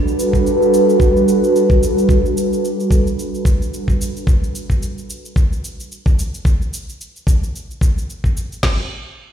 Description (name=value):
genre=sunset chillout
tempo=110 BPM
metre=4/4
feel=swing 57% on 16ths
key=unclear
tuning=A4 = 440 Hz
part: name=airy breathy pad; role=sustained chords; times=0.0-4.2 s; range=G3 to B4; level=-15 LUFS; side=right 1 dB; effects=chorus
part: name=cabasa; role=drums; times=0.1-8.6 s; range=none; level=-33 LUFS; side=right 1 dB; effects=none
part: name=smooth R&B drum kit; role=drums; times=0.3-8.8 s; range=crash cymbal, kick drum, snare drum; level=-15 LUFS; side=equal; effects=none
room=moderate lush hall reverb, RT60 1.9 s, digital ambience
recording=played on a big sound system in a bare room, stone room reverb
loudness=-14 LUFS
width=side -9 dB against mid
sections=0.0-8.6 A section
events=none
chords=0.0 Gmaj9; 4.3 N.C.